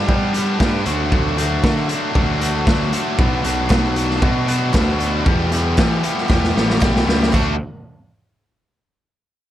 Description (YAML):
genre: indie rock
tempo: 116 BPM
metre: 4/4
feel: straight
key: D major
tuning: A4 = 445 Hz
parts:
  - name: distorted electric guitar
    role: riff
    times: 0.0-7.5 s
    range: E2 to G4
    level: -20 LUFS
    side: left 1 dB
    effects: overdrive
  - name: fuzz picked electric bass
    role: bass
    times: 0.0-7.6 s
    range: A1 to G3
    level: -21 LUFS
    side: equal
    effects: overdrive
  - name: raw garage drum kit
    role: drums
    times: 0.1-7.5 s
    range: hi-hat, kick drum, snare drum, splash cymbal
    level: -19 LUFS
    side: equal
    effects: none
  - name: group handclap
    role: percussion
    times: 3.7-7.6 s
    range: none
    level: -34 LUFS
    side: right 5 dB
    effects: none
room: little or no reverb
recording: none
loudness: -15 LUFS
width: side -12 dB against mid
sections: 0.0-7.3 A section; 7.3-9.4 B section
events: drum fill 6.3-7.3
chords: 0.0 G; 0.9 D; 3.2 Bm; 5.3 Em; 7.3 D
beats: 0.08 0.60 | 1.12 1.64 2.15 2.67 | 3.19 3.71 4.23 4.75 | 5.26 5.78 6.30 6.82 | 7.34